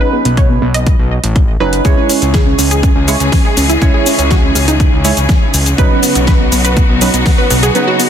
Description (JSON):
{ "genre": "progressive house", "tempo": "122 BPM", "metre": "4/4", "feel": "straight", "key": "C# minor", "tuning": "A4 = 442 Hz", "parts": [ { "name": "wide unison pluck", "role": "arpeggios", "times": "0.0-8.1 s", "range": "B3 to D#5", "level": "-17 LUFS", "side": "right 1 dB", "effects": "sidechain pumping, digital delay" }, { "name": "deep mellow chord stab", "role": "stabs", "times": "0.0-8.1 s", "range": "F#3 to C#5", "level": "-17 LUFS", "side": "right 4 dB", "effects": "chorus, sidechain pumping, digital delay" }, { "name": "fat analog bass", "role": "bass", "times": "0.3-7.7 s", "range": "F#1 to C#2", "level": "-15 LUFS", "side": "equal", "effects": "sidechain pumping" }, { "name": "pop drum kit", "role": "drums", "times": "0.3-8.1 s", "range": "hi-hat, shaker, snare drum", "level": "-17 LUFS", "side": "left 1 dB", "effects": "overdrive" }, { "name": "electronic kick drum", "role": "drums", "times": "0.4-7.4 s", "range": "none", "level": "-12 LUFS", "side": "equal", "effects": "overdrive" }, { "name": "rich studio string section", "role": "sustained chords", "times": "1.8-8.1 s", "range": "C#3 to G#4", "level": "-18 LUFS", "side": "left 3 dB", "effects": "sidechain pumping" } ], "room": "light reverb", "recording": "dense, heavily limited modern master", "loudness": "-9 LUFS", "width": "side -9 dB against mid", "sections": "0.0-8.1 A section", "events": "none", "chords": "0.0 Badd9; 1.8 C#m; 5.8 Badd9" }